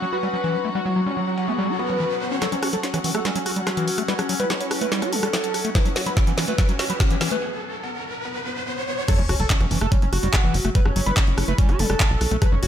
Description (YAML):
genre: psychedelic trance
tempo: 144 BPM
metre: 4/4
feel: straight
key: F# phrygian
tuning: A4 = 440 Hz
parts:
  - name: overdriven synth lead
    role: melody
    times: 0.0-12.7 s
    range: F#3 to B4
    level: -27 LUFS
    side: equal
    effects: distortion, chorus, phaser, vintage 12-bit sampler grit, sidechain pumping, tape echo
  - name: metallic wobble bass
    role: second line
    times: 0.0-11.7 s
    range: B3 to E4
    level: -38 LUFS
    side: left 3 dB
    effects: lush chorus, sidechain pumping, high-pass filter, tape echo
  - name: overtone-sweeping drone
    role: sustained chords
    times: 0.0-12.7 s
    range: F#3 to F#4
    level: -32 LUFS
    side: left 3 dB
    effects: chorus, built-in reverb, sidechain pumping
  - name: overdriven acid bass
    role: riff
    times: 0.0-12.7 s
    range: E3 to G4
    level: -27 LUFS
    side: moving between left 7 dB and right 6 dB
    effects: distortion, auto-pan, sidechain pumping
  - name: riser and sub drop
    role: sound effects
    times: 0.7-10.8 s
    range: none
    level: -31 LUFS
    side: equal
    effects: none
  - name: dark chamber string section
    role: texture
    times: 0.0-7.4 s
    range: C#4 to F#5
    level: -34 LUFS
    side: equal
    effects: sidechain pumping
  - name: drum and bass drum kit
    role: drums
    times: 2.4-12.7 s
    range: crash cymbal, handclaps, hi-hat, rim click, snare drum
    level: -26 LUFS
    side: equal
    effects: overdrive, low-pass filter on snare, studio reverb, low-pass filter on hats, low-pass filter on cymbals
  - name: electronic kick drum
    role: drums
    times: 5.8-12.5 s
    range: none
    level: -19 LUFS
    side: equal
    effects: overdrive, studio reverb
  - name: tight sequencer bass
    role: bass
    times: 9.2-12.7 s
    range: F#1 to B1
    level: -23 LUFS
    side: equal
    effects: none
room: light reverb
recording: none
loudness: -20 LUFS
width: side -10 dB against mid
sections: 0.0-2.4 A section; 2.4-9.1 B section; 9.1-12.7 C section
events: filter sweep on acid bass 0.0-2.4, 2.4-9.1; riser 0.7-2.4, 2.4-9.1; build-up 2.4-9.1; drum fill 2.4-7.4; break 7.4-9.1; drop 9.1-12.7; impact 9.1-10.8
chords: 0.0 F#5